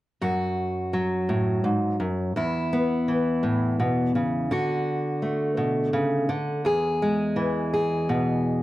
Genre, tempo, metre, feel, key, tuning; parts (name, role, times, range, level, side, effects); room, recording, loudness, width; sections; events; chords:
folk; 56 BPM (dotted quarters); 6/8; straight; A4 = 440 Hz
fingerpicked steel-string acoustic guitar; accompaniment; 0.2-8.6 s; E2 to G#4; -22 LUFS; equal
moderate large studio reverb, RT60 1.1 s; -22 LUFS; side -16 dB against mid
0.2-8.6 A section
0.2 F#m; 2.4 Aadd9/E; 4.5 D; 6.6 E